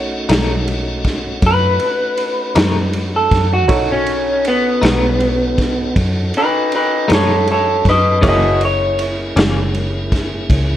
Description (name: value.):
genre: slow blues.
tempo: 53 BPM (dotted quarters).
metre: 12/8.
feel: straight.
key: unclear.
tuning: A4 = 440 Hz.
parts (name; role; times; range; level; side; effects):
clear upright piano; accompaniment; 0.0-10.8 s; D#4 to C#5; -24 LUFS; right 3 dB; none.
tonewheel organ; sustained chords; 0.0-10.8 s; A3 to A4; -26 LUFS; equal; slow rotary speaker.
vintage muted fingered electric bass; bass; 0.0-10.8 s; F#1 to F#2; -19 LUFS; equal; none.
clean electric guitar; accompaniment; 0.3-9.6 s; F#2 to D#4; -20 LUFS; left 3 dB; tremolo.
raw garage drum kit; drums; 0.3-10.7 s; kick drum, ride cymbal, snare drum; -19 LUFS; equal; none.
electric guitar through a small old amp; melody; 1.5-9.0 s; B3 to D#5; -16 LUFS; equal; none.
room: small room reverb.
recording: none.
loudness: -13 LUFS.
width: side -12 dB against mid.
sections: 0.0-10.8 A section.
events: clean electric guitar solo 0.0-10.8.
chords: 0.0 B7; 8.2 F#7.